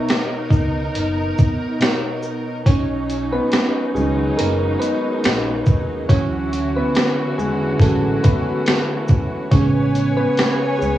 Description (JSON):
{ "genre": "lo-fi hip hop", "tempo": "70 BPM", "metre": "4/4", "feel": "swing 55% on 16ths", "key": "B major", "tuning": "A4 = 440 Hz", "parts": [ { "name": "soft electric-piano-like synth keys", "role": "accompaniment", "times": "0.0-11.0 s", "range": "B2 to E5", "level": "-21 LUFS", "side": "right 1 dB", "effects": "chorus, cassette tape" }, { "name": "warm studio string section", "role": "sustained chords", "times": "0.0-11.0 s", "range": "D3 to G#5", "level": "-24 LUFS", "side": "equal", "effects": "cassette tape" }, { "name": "boom bap sampler-style drum kit", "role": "drums", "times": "0.1-11.0 s", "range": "finger snaps, hi-hat, kick drum, shaker, snare drum", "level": "-18 LUFS", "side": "equal", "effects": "vintage 12-bit sampler grit, cassette tape" }, { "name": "upright bass", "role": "bass", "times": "0.5-11.0 s", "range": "F#1 to E2", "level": "-24 LUFS", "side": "equal", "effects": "none" } ], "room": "digital ambience", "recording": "home recording on cassette, small room ambience", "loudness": "-16 LUFS", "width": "side -13 dB against mid", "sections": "0.0-2.7 A section; 2.7-11.0 B section", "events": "synth keys solo 2.7-11.0", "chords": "0.0 Bmaj9; 6.1 Dmaj9; 9.5 Amaj9", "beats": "0.09 0.95 1.80 | 2.66 3.52 4.37 5.23 | 6.09 6.95 7.80 8.66 | 9.52 10.37" }